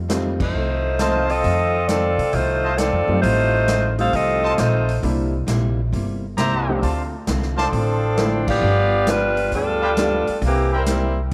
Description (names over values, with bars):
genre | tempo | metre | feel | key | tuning
jazz, big band swing | 134 BPM | 4/4 | swing 68% on 8ths | unclear | A4 = 441 Hz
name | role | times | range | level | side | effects
upright bass | bass | 0.0-11.3 s | G1 to C3 | -25 LUFS | equal | none
archtop guitar, miked and amplified | accompaniment | 0.1-11.3 s | F2 to F4 | -32 LUFS | equal | none
clear upright piano | accompaniment | 0.1-0.4, 3.1-10.2 s | F3 to G4 | -30 LUFS | equal | none
swinging big-band drum kit | drums | 0.1-11.3 s | crash cymbal, hi-hat, kick drum, snare drum | -30 LUFS | equal | none
bright saxophone section | melody | 0.4-11.2 s | E3 to F5 | -22 LUFS | equal | none
clear trumpet section | stabs | 1.0-10.8 s | E4 to Bb5 | -29 LUFS | equal | none
room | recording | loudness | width
moderate spring reverb, RT60 2.4 s | none | -20 LUFS | mono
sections
0.0-11.3 A section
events
band accent 0.3, 8.4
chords
0.0 F7; 5.0 C7; 6.8 Dm7; 8.6 G7; 10.4 C7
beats
0.10 0.55 0.99 | 1.44 1.89 2.34 2.79 | 3.24 3.68 4.13 4.58 | 5.03 5.48 5.92 6.37 | 6.82 7.27 7.72 8.17 | 8.62 9.07 9.52 9.96 | 10.41 10.87 11.32